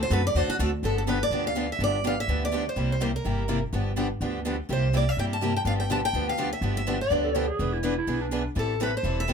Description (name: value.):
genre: acoustic string swing (jazz manouche).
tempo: 248 BPM.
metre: 4/4.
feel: swing 55% on 8ths.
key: G mixolydian.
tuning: A4 = 440 Hz.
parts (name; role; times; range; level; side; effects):
picked steel-string acoustic guitar; melody; 0.0-9.3 s; F#4 to A5; -28 LUFS; left 1 dB; none.
picked steel-string acoustic guitar; accompaniment; 0.0-9.3 s; C3 to A4; -31 LUFS; left 4 dB; none.
picked steel-string acoustic guitar; accompaniment; 0.0-9.3 s; C3 to B4; -33 LUFS; right 6 dB; none.
upright bass; bass; 0.0-9.3 s; E1 to G2; -28 LUFS; equal; none.
growling clarinet; second line; 7.2-8.5 s; D4 to A4; -30 LUFS; right 5 dB; none.
room: moderate small room ambience, RT60 0.5 s.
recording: none.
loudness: -24 LUFS.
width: side -6 dB against mid.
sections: 0.8-9.3 A section.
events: none.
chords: 0.0 D7; 0.8 G7; 2.8 C7; 3.7 G7; 4.7 C7; 5.7 G7; 7.6 E7; 8.6 Am7.